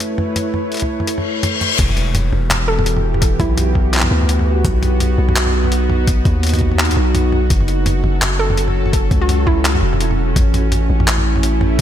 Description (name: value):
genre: half-time drum and bass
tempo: 168 BPM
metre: 4/4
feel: swing 58% on 16ths, half-time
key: E dorian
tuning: A4 = 440 Hz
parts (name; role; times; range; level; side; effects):
- bowed-like drone; sustained chords; 0.0-11.8 s; E3 to C#5; -21 LUFS; right 1 dB; built-in reverb, sidechain pumping
- boom bap sampler-style drum kit; drums; 0.0-11.8 s; crash cymbal, handclaps, hi-hat, toms; -20 LUFS; equal; none
- reverse cymbal and impact; sound effects; 1.2-3.2 s; none; -21 LUFS; left 4 dB; none
- long sustained 808-style bass; bass; 1.8-11.8 s; E1 to D#2; -16 LUFS; equal; none
- electronic kick drum; drums; 1.8-11.8 s; none; -17 LUFS; equal; none
- hollow square pluck; melody; 2.7-3.8, 8.4-10.0 s; E4 to A4; -24 LUFS; right 2 dB; chorus, diffuse ambient delay
room: light reverb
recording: none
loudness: -14 LUFS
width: side -10 dB against mid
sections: 0.0-1.8 A section; 1.8-11.8 B section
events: reverse cymbal 1.2-1.8; drop 1.8-11.8; impact 1.8-3.2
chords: 0.0 A; 1.8 Em; 4.6 B; 7.5 F#m; 10.4 A